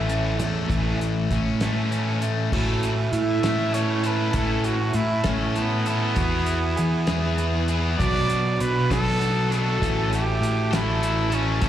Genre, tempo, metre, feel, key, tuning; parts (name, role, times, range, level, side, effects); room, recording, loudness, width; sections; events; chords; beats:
indie rock; 66 BPM (dotted quarters); 6/8; straight; A major; A4 = 440 Hz
cranked stack guitar; riff; 0.0-11.7 s; E3 to A4; -29 LUFS; left 10 dB; overdrive, slapback echo
distorted electric guitar; riff; 0.0-11.7 s; E3 to A4; -29 LUFS; right 6 dB; overdrive, ensemble chorus, slapback echo, analog delay
fuzz fingered electric bass; bass; 0.0-11.7 s; A1 to E3; -24 LUFS; equal; overdrive
cloth-damped thuddy drum kit; drums; 0.1-11.7 s; crash cymbal, hi-hat, kick drum, snare drum; -28 LUFS; equal
barky tine electric piano; second line; 2.5-11.7 s; E4 to G#4; -32 LUFS; right 6 dB; phaser, slapback echo
clear trumpet; melody; 3.1-11.7 s; B3 to E5; -27 LUFS; equal; slapback echo
light reverb, studio ambience; live gig heard through the venue's PA, club reverb; -20 LUFS; side -11 dB against mid
0.0-2.5 A section; 2.5-11.7 B section
trumpet solo 2.5-11.7
0.0 A; 6.2 Eadd9; 8.0 Bm; 9.8 A
| 0.69 1.61 | 2.52 3.43 | 4.35 5.26 | 6.17 7.08 | 7.99 8.90 | 9.81 10.72 | 11.63